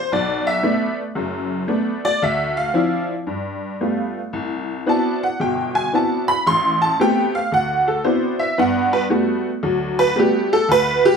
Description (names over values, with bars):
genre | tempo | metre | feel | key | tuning
solo jazz | 113 BPM | 4/4 | swing 68% on 8ths | G major | A4 = 441 Hz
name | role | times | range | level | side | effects
honky-tonk upright piano | solo | 0.0-11.2 s | F#1 to C6 | -17 LUFS | equal | none
room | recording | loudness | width
wet club reverb, RT60 0.9 s | heard from further back in the room | -17 LUFS | side -6 dB against mid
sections
0.0-11.2 A section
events
honky-tonk piano solo 0.0-11.2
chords
0.1 Bm7; 2.2 Dm9; 3.3 G9; 4.3 Cmaj9#11; 6.5 Am9; 7.5 D13; 8.6 Gmaj9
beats
| 0.10 0.63 1.16 1.69 | 2.22 2.75 3.28 3.81 | 4.33 4.86 5.39 5.92 | 6.45 6.98 7.51 8.04 | 8.57 9.10 9.63 10.16 | 10.69